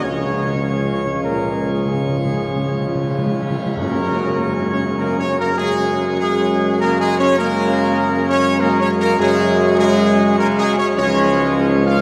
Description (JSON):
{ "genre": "classical, ceremonial fanfare", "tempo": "100 BPM", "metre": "3/4", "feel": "straight", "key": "F# major", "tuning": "A4 = 436 Hz", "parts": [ { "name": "mellow trumpet section", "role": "melody", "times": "0.0-12.0 s", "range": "G#4 to E#5", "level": "-23 LUFS", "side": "equal", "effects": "none" }, { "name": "clear trombone section", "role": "sustained chords", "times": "0.0-12.0 s", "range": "G#2 to G#3", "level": "-27 LUFS", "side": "equal", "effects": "none" }, { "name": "mellow French horn section", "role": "sustained chords", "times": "0.0-12.0 s", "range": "G#3 to E#4", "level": "-25 LUFS", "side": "equal", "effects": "none" }, { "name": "pipe organ, plenum", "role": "sustained chords", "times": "0.0-12.0 s", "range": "E#3 to C#5", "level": "-25 LUFS", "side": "equal", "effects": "none" }, { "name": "warm tuba", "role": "bass", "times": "0.0-12.0 s", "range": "C#2 to F#2", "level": "-23 LUFS", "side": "equal", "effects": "none" }, { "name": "cymbal swell and tam-tam", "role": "percussion", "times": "0.0-6.2 s", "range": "none", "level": "-34 LUFS", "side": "equal", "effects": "none" }, { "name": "timpani", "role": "percussion", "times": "0.0-4.6 s", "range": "F#2 to C#3", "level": "-28 LUFS", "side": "equal", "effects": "none" } ], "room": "wet cathedral reverb, RT60 5.0 s", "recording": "none", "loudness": "-17 LUFS", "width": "mono", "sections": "0.0-3.8 A section; 3.8-12.0 B section", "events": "timpani fill 0.0-3.8; band accent 3.8-4.4", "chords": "0.0 C#; 3.8 F#add9; 11.0 C#add9" }